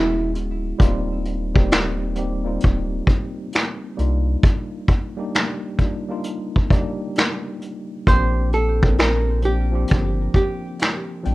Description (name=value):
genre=lo-fi hip hop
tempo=66 BPM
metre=4/4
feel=swing 66% on 16ths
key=Bb major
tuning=A4 = 436 Hz
part: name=archtop guitar, miked and amplified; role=melody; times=0.0-0.3, 8.1-11.3 s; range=E4 to C5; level=-24 LUFS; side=right 2 dB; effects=low-pass filter, tape echo
part: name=tine electric piano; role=accompaniment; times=0.0-11.3 s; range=F3 to G5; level=-27 LUFS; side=left 1 dB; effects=overdrive, fast stereo tremolo, low-pass filter
part: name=soft dub sub bass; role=bass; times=0.0-11.3 s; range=D1 to C2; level=-22 LUFS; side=equal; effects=none
part: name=vintage brush drum kit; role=drums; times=0.3-11.3 s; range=finger snaps, hi-hat, kick drum, snare drum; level=-18 LUFS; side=equal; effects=none
room=light reverb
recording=rough home demo mix, cassette tape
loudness=-18 LUFS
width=side -19 dB against mid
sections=0.0-11.3 A section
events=none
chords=0.0 E6; 0.8 Eb6; 4.0 Cm11 (rootless); 8.1 Bb69